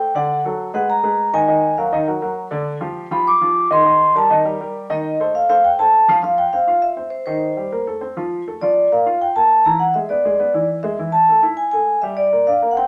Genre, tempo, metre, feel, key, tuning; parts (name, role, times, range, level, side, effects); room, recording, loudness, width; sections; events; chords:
jazz; 202 BPM; 4/4; straight; F major from 6.2 s; A4 = 440 Hz
vibraphone with soft mallets; melody; 0.0-12.9 s; C5 to D6; -17 LUFS; equal
warm baby grand piano; accompaniment; 0.0-12.9 s; D3 to F5; -25 LUFS; equal
wet studio reverb, RT60 0.6 s; -17 LUFS; mono
0.0-6.2 A section; 6.2-12.9 B section
vibraphone solo 0.0-6.2
0.3 Bm7; 0.9 Abmadd9; 1.5 Gb69; 2.7 G5; 3.9 Cm7; 5.0 F7; 6.2 F5; 7.4 Cm7; 8.0 F; 8.6 Bbmaj7; 9.8 E7; 11.0 A5; 12.2 Gm